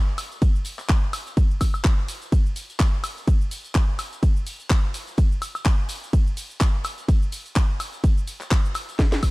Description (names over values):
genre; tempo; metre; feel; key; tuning
house; 126 BPM; 4/4; swing 56% on 16ths; none; none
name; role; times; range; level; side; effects
house drum kit; drums; 0.2-9.3 s; handclaps, hi-hat, ride cymbal, shaker, snare drum, woodblock; -30 LUFS; equal; none
tambourine; percussion; 0.2-9.3 s; none; -42 LUFS; left 2 dB; none
electronic kick drum; drums; 0.4-9.3 s; none; -19 LUFS; equal; none
room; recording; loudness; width
digital ambience; dark, warm production; -20 LUFS; side -23 dB against mid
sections
0.0-9.3 A section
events
drum fill 9.0-9.3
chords
none